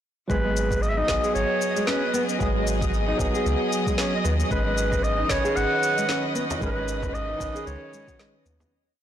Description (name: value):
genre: organic downtempo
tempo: 114 BPM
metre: 4/4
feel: swing 56% on 16ths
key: G# minor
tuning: A4 = 438 Hz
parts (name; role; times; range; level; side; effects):
- mellow clarinet; melody; 0.3-8.4 s; B4 to F#5; -27 LUFS; equal; vintage 12-bit sampler grit, digital delay
- tine electric piano; accompaniment; 0.3-8.7 s; D#3 to B4; -30 LUFS; right 4 dB; lush chorus, sidechain pumping, digital delay
- bright chamber string section; sustained chords; 0.3-8.7 s; F#3 to D#5; -33 LUFS; left 2 dB; vintage 12-bit sampler grit, sidechain pumping
- nylon-string guitar; arpeggios; 0.3-8.7 s; G#3 to G#4; -30 LUFS; left 2 dB; low-pass filter, digital delay
- warm sub bass; bass; 0.3-8.6 s; G#1 to D#2; -28 LUFS; equal; none
- electronic kick drum; drums; 0.3-8.2 s; none; -30 LUFS; equal; studio reverb
- electronic shaker and snare drum; drums; 0.3-8.7 s; none; -32 LUFS; left 1 dB; studio reverb, soft clipping on snare
- twinkling granular texture; texture; 0.9-8.7 s; D#5; -35 LUFS; right 2 dB; built-in reverb
- frame drum; percussion; 6.5-8.7 s; none; -36 LUFS; right 2 dB; none
room: light reverb, small room ambience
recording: blown-out, overdriven recording, overdrive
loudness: -22 LUFS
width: side -10 dB against mid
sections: 0.3-8.7 groove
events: fade-out 5.9-8.7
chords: 0.3 G#m7